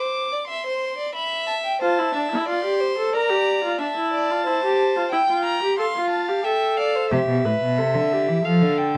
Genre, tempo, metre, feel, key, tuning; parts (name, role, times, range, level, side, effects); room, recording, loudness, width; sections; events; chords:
classical, baroque-style fugue for string quartet; 91 BPM; 4/4; straight; F major; A4 = 441 Hz
warm violin; melody; 0.0-9.0 s; E5 to D6; -27 LUFS; equal
rich violin; second line; 0.0-7.1 s; C5 to G5; -29 LUFS; equal
rich viola; accompaniment; 1.8-9.0 s; D4 to B4; -25 LUFS; equal
rich cello; bass; 7.1-9.0 s; A2 to F3; -24 LUFS; equal
light reverb; dark, warm production; -22 LUFS; mono
0.0-9.0 A section
0.0 N.C.; 0.5 C; 1.8 F; 3.1 Bb; 4.5 C7/E; 5.8 F; 7.1 C; 8.4 F